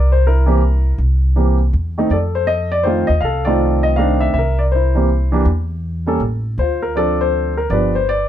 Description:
jazz piano trio; 161 BPM; 3/4; swing 64% on 8ths; C mixolydian; A4 = 441 Hz
warm baby grand piano; melody; 0.0-8.3 s; Eb3 to F5; -17 LUFS; equal
upright bass; bass; 0.0-8.3 s; G1 to F2; -16 LUFS; equal
light reverb; dark, warm production; -14 LUFS; side -11 dB against mid
0.0-8.3 A section
0.0 C7; 2.1 F7; 4.3 C7; 5.5 N.C.; 6.6 Dm7; 7.7 G7
0.24 0.61 | 0.99 1.36 1.73 | 2.11 2.48 2.85 | 3.23 3.60 3.97 | 4.34 4.72 5.09 | 5.46 5.84 6.21 | 6.58 6.96 7.33 | 7.71 8.08

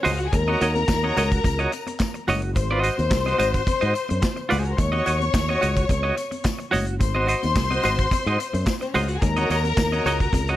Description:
disco; 108 BPM; 4/4; straight; Eb dorian; A4 = 440 Hz
clear studio string section; second line; 0.0-10.6 s; C4 to Db6; -26 LUFS; left 4 dB
semi-hollow electric guitar; accompaniment; 0.0-10.6 s; Gb4 to Eb5; -25 LUFS; right 3 dB; tremolo
congas; percussion; 0.0-10.5 s; -34 LUFS; left 5 dB
tambourine; percussion; 0.0-10.5 s; -42 LUFS; left 12 dB
fingered electric bass; bass; 0.1-10.5 s; Gb1 to Ab2; -25 LUFS; equal
modern studio drum kit; drums; 0.1-10.6 s; handclaps, hi-hat, kick drum, snare drum; -25 LUFS; equal
light reverb, small room ambience; -20 LUFS; side -14 dB against mid
0.0-10.6 A section
0.3 Ebm7; 2.6 Ab7; 4.8 Ebm7; 7.0 Ab7; 9.2 Ebm7
| 0.33 0.89 1.44 2.00 | 2.56 3.11 3.67 4.22 | 4.78 5.34 5.89 6.45 | 7.00 7.56 8.11 8.67 | 9.22 9.78 10.34

